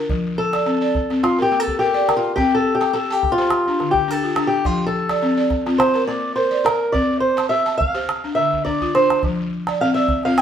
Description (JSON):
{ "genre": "west african traditional, West African string and xylophone music", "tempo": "105 BPM", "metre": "4/4", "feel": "swing 53% on 16ths", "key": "F major", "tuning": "A4 = 440 Hz", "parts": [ { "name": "balafon", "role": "arpeggios", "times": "0.0-10.4 s", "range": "D3 to A5", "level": "-21 LUFS", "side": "left 1 dB", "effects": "none" }, { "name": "calabash", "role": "percussion", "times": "0.1-10.4 s", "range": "none", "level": "-25 LUFS", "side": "right 2 dB", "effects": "none" }, { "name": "fingerpicked swing-style acoustic guitar", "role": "melody", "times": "0.4-10.4 s", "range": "F4 to G5", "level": "-19 LUFS", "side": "equal", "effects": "none" } ], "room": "wet studio reverb, RT60 0.8 s", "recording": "band playing live in one room", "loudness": "-16 LUFS", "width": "side -9 dB against mid", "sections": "0.1-10.4 A section", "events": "steel-string acoustic guitar solo 0.1-10.4; drum fill 8.5-9.2", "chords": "0.1 F; 1.2 Bb; 2.4 C5; 3.5 Dm; 4.6 F; 5.8 Bb; 6.9 C5; 8.1 Dm; 9.2 F5" }